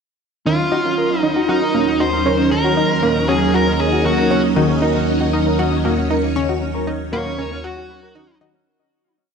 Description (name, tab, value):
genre	ambient, sequencer-driven space music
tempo	117 BPM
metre	4/4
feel	straight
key	Eb minor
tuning	A4 = 440 Hz
part	dark smooth lead guitar	melody	0.5-8.4 s	Eb4 to Db5	-21 LUFS	left 1 dB	overdrive, analog delay
part	phased string machine	sustained chords	0.5-8.7 s	Gb3 to Eb5	-21 LUFS	right 1 dB	ensemble chorus, phaser
part	mellow electric guitar	arpeggios	0.5-8.6 s	Db4 to Bb4	-24 LUFS	moving between left 3 dB and right 6 dB	auto-pan, analog delay
part	analog pluck	riff	0.5-8.7 s	Eb3 to Gb4	-21 LUFS	equal	chorus, vintage 12-bit sampler grit, analog delay
part	analog drone	bass	1.8-8.6 s	Eb2	-23 LUFS	equal	chorus
room	wet plate reverb, RT60 2.4 s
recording	echo-heavy mix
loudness	-15 LUFS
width	side -6 dB against mid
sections	0.5-8.7 A section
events	fade-out 5.9-8.7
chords	0.5 Ebm7